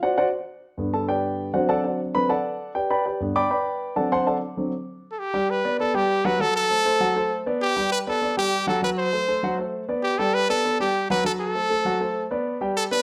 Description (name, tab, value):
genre	latin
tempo	198 BPM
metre	4/4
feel	straight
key	G major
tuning	A4 = 438 Hz
part	dark grand piano	accompaniment	0.0-13.0 s	G2 to D6	-26 LUFS	equal	none
part	bright trumpet	melody	5.1-13.0 s	G4 to C5	-25 LUFS	equal	none
room	moderate large studio reverb, RT60 0.9 s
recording	none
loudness	-24 LUFS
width	mono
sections	0.0-5.2 A section; 5.2-13.0 B section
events	grand piano solo 0.0-5.2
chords	0.3 G; 1.5 D7; 2.8 G; 4.0 D7; 5.2 G; 6.4 D7 (rootless); 7.6 G; 8.8 D7 (rootless); 10.0 G; 11.2 D7 (rootless); 12.5 G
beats	0.02 | 0.32 0.63 0.93 1.23 | 1.54 1.84 2.15 2.45 | 2.75 3.06 3.36 3.66 | 3.97 4.27 4.58 4.88 | 5.18 5.49 5.79 6.09 | 6.40 6.70 7.00 7.31 | 7.61 7.91 8.22 8.52 | 8.82 9.13 9.43 9.73 | 10.03 10.34 10.64 10.94 | 11.24 11.55 11.85 12.15 | 12.46 12.76